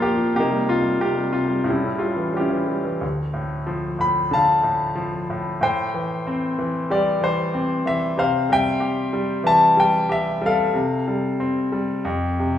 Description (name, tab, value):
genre	classical, lyrical solo piano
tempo	93 BPM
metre	4/4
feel	rubato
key	unclear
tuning	A4 = 441 Hz
part	bright concert grand piano	solo	0.0-12.6 s	D2 to B5	-19 LUFS	left 1 dB	none
room	moderate recital hall reverb, RT60 1.5 s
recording	recorded in a church or concert hall, small room ambience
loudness	-19 LUFS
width	side -10 dB against mid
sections	0.0-3.0 A section; 3.0-12.6 B section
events	none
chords	0.4 Cm7; 1.7 A7; 3.0 Dm; 5.6 Am7; 8.2 C; 10.7 Fadd9/C; 12.0 F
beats	| 0.37 1.01 1.67 2.35 | 3.03 3.69 4.33 4.97 | 5.63 6.27 6.91 7.55 | 8.19 8.81 9.44 10.09 | 10.74 11.40 12.05